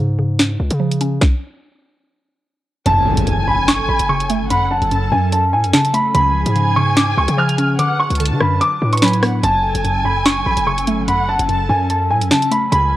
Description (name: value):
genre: hip hop, drill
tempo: 146 BPM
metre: 4/4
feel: half-time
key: F# harmonic minor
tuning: A4 = 438 Hz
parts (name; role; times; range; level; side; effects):
- mallet-like synth pluck; accompaniment; 0.0-13.0 s; F#2 to C#4; -22 LUFS; right 1 dB; chorus, phaser, cassette tape
- hard-hitting 808-style bass; bass; 0.0-13.0 s; F#1 to D3; -20 LUFS; equal; none
- drill drum kit; drums; 0.4-12.8 s; hi-hat, kick drum, rim click, snare drum; -18 LUFS; equal; none
- dark grand piano; melody; 2.9-13.0 s; G#5 to E#6; -18 LUFS; equal; cassette tape
- warm studio violin section; second line; 2.9-13.0 s; F#5 to A5; -24 LUFS; left 1 dB; cassette tape, tape echo
- hollow soft pad; sustained chords; 3.1-13.0 s; E#3 to B4; -26 LUFS; left 1 dB; ensemble chorus, phaser, cassette tape
- impact; sound effects; 2.9-4.5 s; none; -21 LUFS; equal; none
room: light reverb, digital ambience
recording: home recording on cassette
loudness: -14 LUFS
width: side -14 dB against mid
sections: 0.0-2.9 A section; 2.9-13.0 B section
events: stop 1.2-2.9; impact 2.9-4.5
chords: 0.0 C#; 1.2 N.C.; 2.9 F#m; 6.1 C#; 7.8 D6; 9.4 F#m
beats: 0.39 0.80 | 1.22 1.63 2.04 2.45 | 2.86 3.27 3.68 4.09 | 4.50 4.91 5.32 5.74 | 6.15 6.56 6.97 7.38 | 7.79 8.20 8.61 9.02 | 9.43 9.85 10.26 10.67 | 11.08 11.49 11.90 12.31 | 12.72